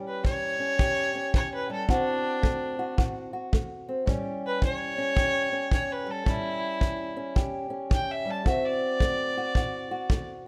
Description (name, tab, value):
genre	acoustic country blues, solo or duo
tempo	110 BPM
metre	4/4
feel	swing 65% on 8ths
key	A mixolydian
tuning	A4 = 440 Hz
part	fingerpicked old ladder-braced acoustic guitar	accompaniment	0.0-10.5 s	E2 to G4	-33 LUFS	equal	none
part	rich fiddle	melody	0.1-10.2 s	D4 to A5	-32 LUFS	equal	none
part	kick drum	drums	0.2-10.3 s	none	-28 LUFS	equal	none
room	small room ambience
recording	rough home demo mix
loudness	-28 LUFS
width	mono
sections	0.0-10.5 A section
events	none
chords	0.0 A7 (rootless); 1.9 D7; 4.1 A7; 8.4 D7